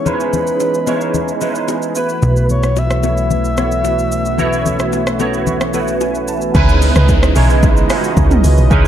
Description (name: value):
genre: amapiano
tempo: 111 BPM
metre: 4/4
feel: straight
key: C# minor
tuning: A4 = 443 Hz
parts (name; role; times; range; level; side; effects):
- breathy flute-like synth lead; melody; 0.0-6.0 s; B4 to E5; -20 LUFS; left 1 dB; chorus, ping-pong delay
- barky tine electric piano; accompaniment; 0.0-8.9 s; G#3 to A5; -18 LUFS; right 4 dB; ensemble chorus
- warm analog pad; sustained chords; 0.0-8.9 s; C#3 to D#5; -23 LUFS; left 2 dB; chorus
- deep house drum kit; drums; 0.1-8.9 s; hi-hat, kick drum, rim click, shaker, toms; -17 LUFS; equal; overdrive
- congas and bongos; percussion; 0.1-6.1 s; none; -23 LUFS; left 7 dB; none
- plucky analog bass; bass; 2.2-6.5 s; B1; -19 LUFS; equal; none
- woody log drum bass; bass; 6.5-8.9 s; B1 to C#2; -12 LUFS; equal; none
- downlifter; sound effects; 6.5-8.9 s; none; -24 LUFS; right 1 dB; none
room: digital ambience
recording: dark, warm production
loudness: -12 LUFS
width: side -10 dB against mid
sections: 0.0-6.5 A section; 6.5-8.9 B section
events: tine electric piano fill 5.5-6.5; drop 6.5-8.9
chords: 0.0 C#m9; 2.0 B7sus4; 6.5 C#m9